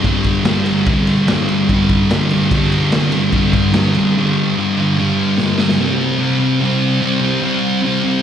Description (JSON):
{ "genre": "garage rock duo or trio", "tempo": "146 BPM", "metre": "4/4", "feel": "straight", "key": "unclear", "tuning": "A4 = 440 Hz", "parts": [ { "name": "thick fuzz guitar", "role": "riff", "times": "0.0-8.2 s", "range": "G2 to C4", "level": "-14 LUFS", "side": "equal", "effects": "distortion, slapback echo" }, { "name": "raw garage drum kit", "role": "drums", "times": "0.0-5.8 s", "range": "kick drum, ride cymbal, snare drum", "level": "-18 LUFS", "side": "equal", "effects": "none" } ], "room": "moderate club reverb, RT60 0.6 s", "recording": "live gig heard through the venue's PA, recital hall reverb", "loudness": "-13 LUFS", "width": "side -9 dB against mid", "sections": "0.0-5.8 A section; 5.8-8.2 A section", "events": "drum fill 5.4-5.8", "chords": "0.0 G5; 5.8 C5", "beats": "0.05 0.46 | 0.87 1.28 1.69 2.10 | 2.51 2.92 3.33 3.74 | 4.15 4.56 4.97 5.38 | 5.79 6.20 6.60 7.01 | 7.42 7.83" }